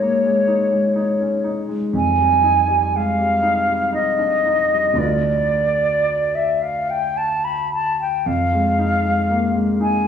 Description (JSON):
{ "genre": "classical, impressionist duo for flute and grand piano", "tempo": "54-64 BPM", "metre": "3/4", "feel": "rubato", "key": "unclear", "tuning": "A4 = 440 Hz", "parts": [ { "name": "silver concert flute", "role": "melody", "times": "0.0-10.1 s", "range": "Db5 to B5", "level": "-18 LUFS", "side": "equal", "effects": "none" }, { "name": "clear grand piano", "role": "accompaniment", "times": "0.0-10.1 s", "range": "D2 to B4", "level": "-21 LUFS", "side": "left 1 dB", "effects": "none" } ], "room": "wet concert hall reverb, RT60 1.9 s", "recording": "heard from further back in the room, studio ambience", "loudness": "-16 LUFS", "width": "side -8 dB against mid", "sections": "0.0-10.1 A section", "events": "none", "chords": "0.0 Bbm7; 1.9 Fm9; 5.0 Dm6; 8.3 Fm7" }